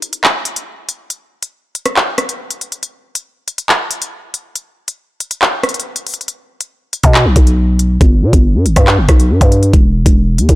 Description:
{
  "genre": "hip hop, drill",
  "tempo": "139 BPM",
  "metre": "4/4",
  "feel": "half-time",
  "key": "unclear",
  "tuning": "A4 = 440 Hz",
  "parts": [
    { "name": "drill drum kit", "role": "drums", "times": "0.0-10.6 s", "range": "handclaps, hi-hat, kick drum, rim click", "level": "-12 LUFS", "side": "equal", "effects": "none" },
    { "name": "growling 808-style bass", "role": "bass", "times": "7.0-10.6 s", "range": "E1 to B2", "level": "-11 LUFS", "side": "equal", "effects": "none" }
  ],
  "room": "little or no reverb",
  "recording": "blown-out, overdriven recording, overdrive",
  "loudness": "-11 LUFS",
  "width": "side -18 dB against mid",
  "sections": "0.0-10.6 A section",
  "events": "break 0.0-6.3, 6.3-6.7",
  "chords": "none",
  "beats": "0.24 0.67 | 1.10 1.53 1.97 2.40 | 2.83 3.26 3.69 4.12 | 4.55 4.99 5.42 5.85 | 6.28 6.71 7.14 7.58 | 8.01 8.44 8.87 9.30 | 9.73 10.17"
}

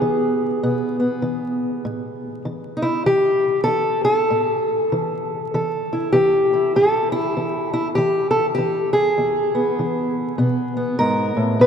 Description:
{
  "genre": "acoustic country blues, solo or duo",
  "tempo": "98 BPM",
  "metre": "4/4",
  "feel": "swing 61% on 8ths",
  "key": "unclear",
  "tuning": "A4 = 441 Hz",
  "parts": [
    { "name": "fingerpicked steel-string acoustic guitar", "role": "solo", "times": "0.0-11.7 s", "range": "E2 to B4", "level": "-18 LUFS", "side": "equal", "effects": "none" }
  ],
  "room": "wet cathedral reverb, RT60 6.1 s",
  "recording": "recorded in a church or concert hall, vinyl crackle",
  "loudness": "-18 LUFS",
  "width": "side -7 dB against mid",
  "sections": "0.0-11.7 A section",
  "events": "none",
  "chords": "0.0 E; 1.9 A5; 9.2 E",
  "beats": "0.01 0.62 1.24 | 1.85 2.46 3.08 3.69 | 4.30 4.91 5.52 6.13 | 6.74 7.35 7.96 8.57 | 9.17 9.78 10.38 10.99 | 11.60"
}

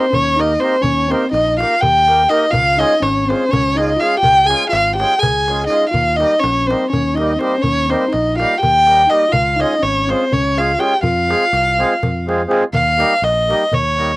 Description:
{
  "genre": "balkan folk, Balkan wedding band",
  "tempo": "247 BPM (eighths)",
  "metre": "7/8",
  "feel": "straight",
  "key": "unclear",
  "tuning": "A4 = 439 Hz",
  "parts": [
    { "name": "dark violin", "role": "melody", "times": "0.0-14.2 s", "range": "C5 to Ab5", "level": "-14 LUFS", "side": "equal", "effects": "none" },
    { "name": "tine electric piano", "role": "second line", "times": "0.0-12.5 s", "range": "C4 to Ab4", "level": "-22 LUFS", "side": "left 2 dB", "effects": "cassette tape" },
    { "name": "accordion", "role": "accompaniment", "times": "0.0-14.1 s", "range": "G3 to Bb4", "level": "-20 LUFS", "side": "right 1 dB", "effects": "cassette tape" },
    { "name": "fingered electric bass", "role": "bass", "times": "0.1-14.1 s", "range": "Ab1 to F2", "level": "-22 LUFS", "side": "equal", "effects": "none" },
    { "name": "darbuka", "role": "percussion", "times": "0.1-14.1 s", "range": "none", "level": "-24 LUFS", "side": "equal", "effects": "none" }
  ],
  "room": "moderate booth ambience, RT60 0.2 s",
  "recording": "home recording on cassette",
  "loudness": "-12 LUFS",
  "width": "side -21 dB against mid",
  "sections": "0.0-12.7 A section; 12.7-14.2 A section",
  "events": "none",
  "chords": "0.0 Eb; 2.5 Db; 5.9 Eb; 9.3 Db; 11.0 Fm; 12.7 Eb",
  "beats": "0.11 0.35 0.59 | 0.84 1.08 1.32 1.57 1.81 2.05 2.30 | 2.54 2.78 3.02 3.27 3.51 3.75 4.00 | 4.24 4.48 4.73 4.97 5.21 5.45 5.70 | 5.94 6.18 6.43 6.67 6.91 7.15 7.40 | 7.64 7.88 8.12 8.37 8.61 8.85 9.10 | 9.34 9.58 9.82 10.07 10.31 10.55 10.79 | 11.04 11.28 11.52 11.77 12.01 12.25 12.49 | 12.73 12.98 13.22 13.46 13.70 13.94"
}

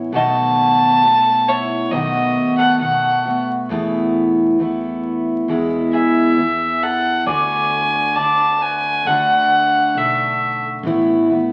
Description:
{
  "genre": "acoustic folk duo or small band",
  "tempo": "67 BPM",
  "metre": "4/4",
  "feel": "straight",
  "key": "unclear",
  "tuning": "A4 = 442 Hz",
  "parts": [
    { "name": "picked steel-string acoustic guitar", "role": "accompaniment", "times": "0.0-11.5 s", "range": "E2 to F#4", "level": "-21 LUFS", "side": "equal", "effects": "none" },
    { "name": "upright bass", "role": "bass", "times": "0.0-11.5 s", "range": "A1 to B2", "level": "-34 LUFS", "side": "equal", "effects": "none" },
    { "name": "warm fiddle", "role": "melody", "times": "0.2-10.6 s", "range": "C#5 to A5", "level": "-19 LUFS", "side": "equal", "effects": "none" },
    { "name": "mandolin", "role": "second line", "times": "0.2-10.6 s", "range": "E4 to D#5", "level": "-27 LUFS", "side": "equal", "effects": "none" }
  ],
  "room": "wet large studio reverb, RT60 1.0 s",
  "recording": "very old 78 rpm record, vinyl crackle",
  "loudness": "-17 LUFS",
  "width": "mono",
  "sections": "0.0-11.5 A section",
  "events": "none",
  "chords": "0.1 B7; 3.7 Esus4; 5.5 E; 7.3 D; 10.9 Asus2",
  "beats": "| 0.12 1.02 1.91 2.81 | 3.70 4.60 5.49 6.39 | 7.28 8.18 9.07 9.96 | 10.86"
}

